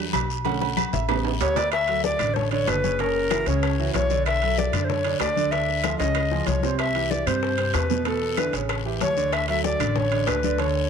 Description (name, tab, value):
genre	Afro-Cuban jazz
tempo	189 BPM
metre	4/4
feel	straight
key	D major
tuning	A4 = 440 Hz
part	warm concert grand piano	accompaniment	0.0-10.9 s	B2 to F#5	-28 LUFS	right 10 dB	none
part	upright bass	bass	0.0-10.9 s	F#1 to G2	-28 LUFS	left 2 dB	none
part	claves	percussion	0.1-10.4 s	none	-38 LUFS	left 17 dB	none
part	congas	percussion	0.1-10.9 s	none	-32 LUFS	left 16 dB	none
part	cowbell and bongos	percussion	0.1-10.9 s	none	-34 LUFS	left 16 dB	none
part	guiro	percussion	0.1-10.9 s	none	-37 LUFS	left 18 dB	none
part	timbales and agogo bells	percussion	0.1-10.8 s	none	-31 LUFS	right 12 dB	none
part	tenor recorder	melody	1.4-10.9 s	A4 to E5	-24 LUFS	left 2 dB	none
room	light reverb, studio reverb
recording	1960s-style stereo with parts hard left and right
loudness	-21 LUFS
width	side -7 dB against mid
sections	0.0-1.7 A section; 1.7-10.9 B section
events	grand piano solo 0.0-1.7; drum fill 0.5-1.7, 6.0-6.8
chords	0.5 Bm7; 1.1 A7; 1.7 Dmaj7; 3.0 F#7; 4.3 Bm7; 5.5 Dm; 6.2 C#add9; 6.8 Cmaj7; 8.1 E5; 8.7 A7; 9.3 Dmaj7